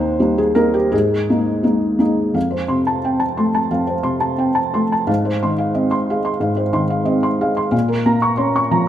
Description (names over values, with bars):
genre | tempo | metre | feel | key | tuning
neoclassical minimalist piano | 83-92 BPM | 4/4 | rubato | unclear | A4 = 441 Hz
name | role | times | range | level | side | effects
felt-muted upright piano | solo | 0.0-8.9 s | Eb2 to Db6 | -15 LUFS | equal | none
room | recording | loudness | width
moderate recital hall reverb, RT60 1.4 s | none | -15 LUFS | side -11 dB against mid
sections
0.0-2.4 A section; 2.4-8.9 B section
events
none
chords
0.0 Eb6; 0.9 Absus2; 2.4 F; 5.1 Ab6; 7.7 Bbm